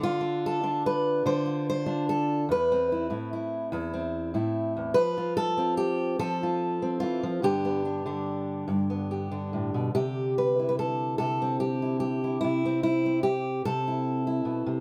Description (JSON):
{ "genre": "folk, solo fingerstyle acoustic guitar", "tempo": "48 BPM (dotted quarters)", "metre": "6/8", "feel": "rubato", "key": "C major", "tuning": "A4 = 440 Hz", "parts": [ { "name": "fingerpicked steel-string acoustic guitar", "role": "solo", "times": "0.0-14.8 s", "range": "E2 to C5", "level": "-28 LUFS", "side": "equal", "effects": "none" } ], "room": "light reverb", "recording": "none", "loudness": "-28 LUFS", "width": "mono", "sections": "0.0-9.9 A section; 9.9-14.8 B section", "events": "none", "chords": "0.0 Dm; 2.5 Amadd9/E; 5.0 F; 7.4 G; 9.9 Cadd9; 12.4 Am/C" }